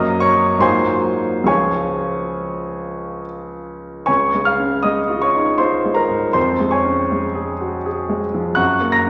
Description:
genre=classical, romantic character piece for solo piano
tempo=67-84 BPM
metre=3/4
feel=rubato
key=Db major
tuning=A4 = 439 Hz
part: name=clear grand piano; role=solo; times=0.0-9.1 s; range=Db2 to Bb6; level=-18 LUFS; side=equal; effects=none
room=wet concert hall reverb, RT60 2.6 s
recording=none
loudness=-18 LUFS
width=mono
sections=0.0-4.1 A section; 4.1-9.1 B section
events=none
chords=0.0 Ebm/Gb; 0.6 Ab13; 1.5 Db; 6.4 Db/F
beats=0.63 | 1.48 2.35 3.23 | 4.08 4.86 5.60 | 6.36 7.12 7.87 | 8.60

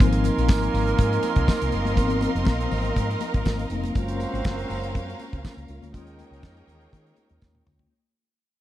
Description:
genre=disco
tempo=121 BPM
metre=4/4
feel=straight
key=Ab major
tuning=A4 = 441 Hz
part: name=mellow tine electric piano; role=accompaniment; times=0.0-7.9 s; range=F3 to F4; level=-29 LUFS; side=left 3 dB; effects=fast stereo tremolo
part: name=clear studio string section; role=sustained chords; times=0.0-7.9 s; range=Ab4 to Db6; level=-34 LUFS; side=right 3 dB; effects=none
part: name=warm horn section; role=stabs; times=0.0-7.6 s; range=Bb3 to C5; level=-30 LUFS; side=right 4 dB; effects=slapback echo
part: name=fingered electric bass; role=bass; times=0.0-7.9 s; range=F1 to Eb3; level=-27 LUFS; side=equal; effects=none
part: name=damped 70s drum kit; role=drums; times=0.0-7.9 s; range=hi-hat, kick drum, snare drum, toms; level=-21 LUFS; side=equal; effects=none
part: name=congas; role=percussion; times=0.0-7.9 s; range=none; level=-36 LUFS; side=left 5 dB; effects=none
part: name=tambourine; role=percussion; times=0.0-7.8 s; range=none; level=-48 LUFS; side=right 8 dB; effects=none
part: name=warm studio string section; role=second line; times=1.0-7.9 s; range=C4 to G5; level=-34 LUFS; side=equal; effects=none
room=light reverb, small room ambience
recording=dark, warm production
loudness=-21 LUFS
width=side -13 dB against mid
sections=0.0-7.9 A section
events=fade-out 0.0-7.9; drum fill 7.4-7.9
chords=0.0 Ab69; 4.0 Gbmaj7; 5.9 Eb7sus4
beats=| 0.00 0.49 0.98 1.48 | 1.97 2.47 2.96 3.46 | 3.95 4.45 4.94 5.44 | 5.93 6.43 6.92 7.42

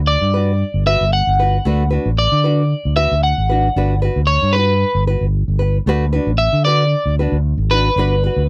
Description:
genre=highlife guitar band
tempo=114 BPM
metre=4/4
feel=straight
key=D major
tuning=A4 = 440 Hz
part: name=fingered electric bass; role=bass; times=0.0-8.5 s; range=G1 to D3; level=-19 LUFS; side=equal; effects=none
part: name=electric guitar at the edge of break-up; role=melody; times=0.1-8.5 s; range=B4 to F#5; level=-19 LUFS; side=equal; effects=analog chorus
part: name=nylon-string guitar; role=accompaniment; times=0.3-8.4 s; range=A3 to B4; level=-24 LUFS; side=equal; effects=none
room=little or no reverb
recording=dry, close 1970s-style studio recording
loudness=-16 LUFS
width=mono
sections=0.0-8.5 A section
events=clean electric guitar solo 0.0-8.5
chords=0.0 Gmaj7; 1.7 D6; 3.8 Gmaj7; 5.9 D6; 8.0 Gmaj7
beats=0.08 0.61 1.14 | 1.67 2.19 2.72 3.25 | 3.77 4.30 4.82 5.35 | 5.88 6.40 6.93 7.45 | 7.98

